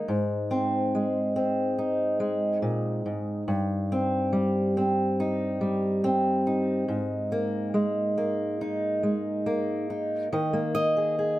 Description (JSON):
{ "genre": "folk, solo fingerstyle acoustic guitar", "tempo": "70 BPM", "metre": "4/4", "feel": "straight", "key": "unclear", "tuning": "A4 = 440 Hz", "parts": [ { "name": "fingerpicked steel-string acoustic guitar", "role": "solo", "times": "0.0-11.4 s", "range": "G2 to Eb5", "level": "-24 LUFS", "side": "equal", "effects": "none" } ], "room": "light reverb", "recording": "none", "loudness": "-24 LUFS", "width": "side -16 dB against mid", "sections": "0.0-10.3 A section; 10.3-11.4 B section", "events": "none", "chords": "0.1 Ab; 3.5 Cm/G; 6.9 Absus2; 10.3 Ebsus4" }